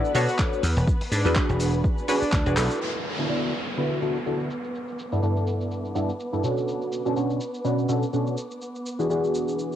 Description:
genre	filtered disco house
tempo	124 BPM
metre	4/4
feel	swing 56% on 16ths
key	D major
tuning	A4 = 439 Hz
part	funky polysynth comp	accompaniment	0.0-9.8 s	G2 to D5	-25 LUFS	equal	chorus, phaser, sidechain pumping, low-pass filter, cassette tape
part	muted symphonic string section	sustained chords	0.0-9.8 s	B3 to D6	-35 LUFS	equal	sidechain pumping, low-pass filter, cassette tape
part	dusty soul sampler-style drum kit	drums	0.0-9.8 s	cabasa, crash cymbal, handclaps, hi-hat	-33 LUFS	equal	sidechain pumping on perc, low-pass filter on perc, cassette tape, sidechain pumping on hats, low-pass filter on hats, low-pass filter on snare, sidechain pumping on cymbals, low-pass filter on cymbals
part	clear horn section	melody	0.1-2.8 s	D4 to F#4	-31 LUFS	equal	sidechain pumping, low-pass filter, cassette tape, tape echo
part	dry thumbed slap bass	bass	0.1-2.7 s	E1 to B2	-24 LUFS	equal	tube saturation, sidechain pumping, low-pass filter
part	electronic kick drum	drums	0.4-2.4 s	none	-24 LUFS	equal	overdrive, cassette tape
part	downlifter	sound effects	2.8-6.7 s	none	-33 LUFS	equal	none
room	moderate spring reverb, RT60 1.4 s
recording	home recording on cassette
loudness	-23 LUFS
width	side -10 dB against mid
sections	0.0-2.8 A section; 2.8-9.8 B section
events	drum fill 2.6; band accent 2.6; filter sweep on drum 2.8-9.8; filter sweep 2.8-9.8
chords	0.0 Bm7; 0.6 E7; 2.8 D6; 4.5 G6; 6.4 Bm7; 8.4 E7

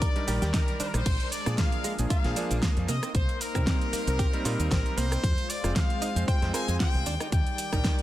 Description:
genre	nu-disco, nu disco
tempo	115 BPM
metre	4/4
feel	swing 55% on 16ths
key	Eb major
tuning	A4 = 440 Hz
part	brilliant trumpet section	melody	0.0-8.0 s	Bb4 to Ab5	-34 LUFS	left 3 dB	digital delay
part	clear electric grand piano	accompaniment	0.0-8.0 s	Eb3 to D5	-35 LUFS	right 2 dB	sidechain pumping
part	lush unison pad	sustained chords	0.0-8.0 s	Eb3 to D5	-39 LUFS	equal	chorus, sidechain pumping
part	direct-recorded clean electric guitar	riff	0.0-8.0 s	Bb2 to C5	-37 LUFS	right 4 dB	analog chorus
part	fingered electric bass with an envelope filter	bass	0.0-7.8 s	F1 to C3	-29 LUFS	equal	sidechain pumping
part	electronic kick drum	drums	0.0-8.0 s	none	-27 LUFS	equal	studio reverb
part	pop drum kit	drums	0.0-8.0 s	crash cymbal, hi-hat, rim click, shaker, snare drum	-33 LUFS	right 1 dB	studio reverb, soft clipping on snare
room	digital ambience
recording	dense, heavily limited modern master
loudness	-24 LUFS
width	side -14 dB against mid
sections	0.0-8.0 A section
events	none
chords	0.0 Ebmaj7; 1.1 Bb7; 2.9 Cm7; 5.2 Fm; 7.1 Ebmaj7

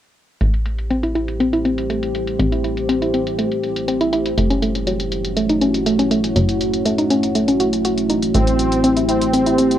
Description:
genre	melodic techno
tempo	121 BPM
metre	4/4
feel	straight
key	unclear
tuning	A4 = 439 Hz
part	deep dark ambient pad	sustained chords	1.1-9.8 s	A3 to C#5	-21 LUFS	equal	chorus, built-in reverb
part	woody wave-folded pluck	arpeggios	0.4-9.7 s	F#3 to F#4	-19 LUFS	equal	chorus, tape echo
part	plucky analog bass	bass	0.4-9.8 s	F#1 to A1	-24 LUFS	equal	tube saturation
part	electronic hi-hat	drums	0.4-9.8 s	none	-28 LUFS	left 1 dB	low-pass filter on hats, cassette tape, low-pass filter on room
part	soft supersaw	melody	8.3-9.8 s	C4	-18 LUFS	right 1 dB	cassette tape
room	light reverb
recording	home recording on cassette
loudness	-16 LUFS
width	side -11 dB against mid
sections	0.4-9.8 A section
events	filter sweep on synth pluck 0.4-9.8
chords	0.4 Am7; 4.4 F#m7; 8.3 Am7

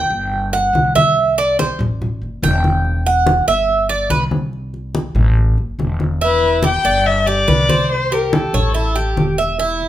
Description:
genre	latin, Cuban son and guajira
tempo	142 BPM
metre	4/4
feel	straight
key	unclear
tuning	A4 = 437 Hz
part	Cuban tres	arpeggios	0.0-9.9 s	E4 to G5	-17 LUFS	right 2 dB	none
part	upright bass	bass	0.0-9.9 s	E1 to C2	-20 LUFS	equal	none
part	congas	percussion	0.1-9.9 s	none	-20 LUFS	left 1 dB	none
part	warm violin	melody	6.2-9.2 s	A4 to G5	-17 LUFS	left 4 dB	none
room	light reverb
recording	minimal, uncompressed stereo recording, faint mains hum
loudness	-14 LUFS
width	side -12 dB against mid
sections	0.0-6.2 A section; 6.2-9.9 B section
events	Cuban tres solo 0.0-6.2; drum fill 6.0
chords	0.3 C/G; 1.2 Amadd11; 2.0 A5; 2.8 Em; 3.7 Gadd11; 4.5 Am; 5.4 A5; 6.2 Em7; 7.1 G; 7.9 C5; 8.7 A5

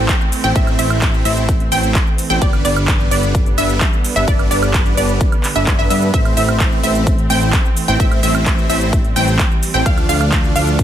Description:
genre	EDM, festival progressive house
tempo	129 BPM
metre	4/4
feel	straight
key	A minor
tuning	A4 = 436 Hz
part	rich studio string section	sustained chords	0.0-10.8 s	D3 to D4	-24 LUFS	right 2 dB	sidechain pumping
part	wide unison pluck	arpeggios	0.0-10.8 s	D5 to G5	-21 LUFS	right 1 dB	sidechain pumping, dub echo
part	supersaw chords	riff	0.0-10.8 s	G3 to G5	-21 LUFS	equal	sidechain pumping, dub echo
part	fat analog bass	bass	0.0-10.8 s	G1 to G2	-19 LUFS	equal	sidechain pumping
part	downlifter	sound effects	0.0-2.4 s	none	-34 LUFS	equal	none
part	big-room dance drum kit	drums	0.1-10.8 s	cabasa, handclaps, hi-hat, woodblock	-22 LUFS	right 2 dB	none
part	electronic kick drum	drums	0.1-10.8 s	none	-16 LUFS	equal	none
room	light reverb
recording	none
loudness	-12 LUFS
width	side -10 dB against mid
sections	0.0-10.8 A section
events	none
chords	0.0 Am; 2.4 G; 6.1 Am; 9.9 Dm

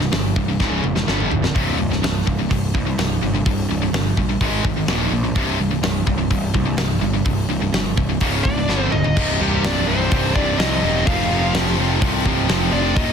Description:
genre	heavy metal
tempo	126 BPM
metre	4/4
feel	straight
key	C minor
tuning	A4 = 440 Hz
part	distorted electric guitar	riff	0.0-13.1 s	C2 to Ab3	-24 LUFS	right 11 dB	overdrive
part	tight distorted guitar	riff	0.0-13.1 s	C2 to Ab3	-24 LUFS	left 13 dB	distortion
part	fuzz picked electric bass	bass	0.0-13.1 s	C1 to C2	-23 LUFS	equal	overdrive
part	big rock drum kit	drums	0.0-13.1 s	crash cymbal, hi-hat, kick drum, snare drum, toms	-22 LUFS	equal	soft clipping on kick, soft clipping on snare
part	high-gain lead guitar	melody	8.4-13.1 s	G4 to F5	-24 LUFS	left 1 dB	distortion, ping-pong delay
part	high-gain lead guitar	second line	8.4-13.1 s	G3 to F4	-30 LUFS	right 4 dB	none
part	pipe organ, cornet	sustained chords	9.2-13.1 s	C3 to G4	-33 LUFS	equal	none
room	little or no reverb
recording	dense, heavily limited modern master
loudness	-17 LUFS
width	side -7 dB against mid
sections	0.0-9.2 A section; 9.2-13.1 B section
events	drum fill 0.6-1.6, 8.7-9.2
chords	0.0 C5; 0.6 Db5; 1.1 G5; 1.6 C5; 4.4 Ab5; 4.9 Eb5; 5.4 C5; 8.2 Db5; 8.7 G5; 9.2 Cm; 11.1 F5

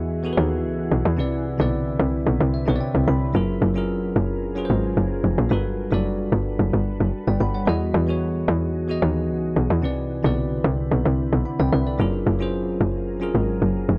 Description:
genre	amapiano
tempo	111 BPM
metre	4/4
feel	straight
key	unclear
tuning	A4 = 441 Hz
part	bell-like tine electric piano	accompaniment	0.0-14.0 s	C3 to B5	-28 LUFS	equal	none
part	glassy FM pad	sustained chords	0.0-14.0 s	E3 to B4	-35 LUFS	equal	ensemble chorus, built-in reverb
part	tight log drum bass	bass	0.0-14.0 s	E#1 to E2	-24 LUFS	equal	none
room	little or no reverb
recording	dry, gritty hardware recording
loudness	-22 LUFS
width	mono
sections	0.0-14.0 A section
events	tine electric piano fill 2.3-3.3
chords	0.0 Emaj9; 1.2 Cmaj9; 3.3 F#maj9; 5.5 Gmaj9; 7.7 Emaj9; 9.8 Cmaj9; 12.0 F#maj9

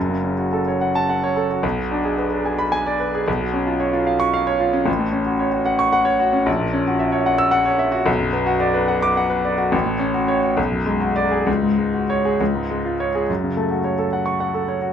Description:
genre	classical, virtuoso piano study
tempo	64-76 BPM (dotted quarters)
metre	6/8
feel	rubato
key	F# minor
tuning	A4 = 440 Hz
part	clear grand piano	solo	0.0-14.9 s	F#1 to E6	-17 LUFS	equal	none
room	light reverb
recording	dark, warm production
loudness	-17 LUFS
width	side -8 dB against mid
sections	0.0-13.3 A section; 13.3-14.9 A section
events	none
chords	0.0 F#m; 1.6 G#dim/B; 3.3 C#7/B; 4.9 F#m/A; 6.5 F#7/A#; 8.1 Bm; 9.7 F#m/A; 10.6 G#m7b5/B; 11.5 C#sus4; 12.4 C#; 13.3 F#m

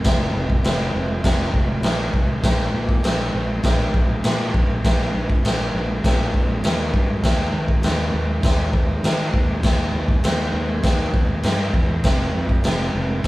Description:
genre	garage rock duo or trio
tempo	100 BPM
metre	4/4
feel	straight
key	unclear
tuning	A4 = 440 Hz
part	fuzz fingered electric bass	bass	0.0-13.3 s	F1 to Eb3	-24 LUFS	equal	overdrive
part	raw garage drum kit	drums	0.0-13.3 s	crash cymbal, kick drum, snare drum	-19 LUFS	equal	none
room	light reverb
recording	band playing live in one room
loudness	-18 LUFS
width	side -18 dB against mid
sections	0.0-13.3 A section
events	none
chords	none

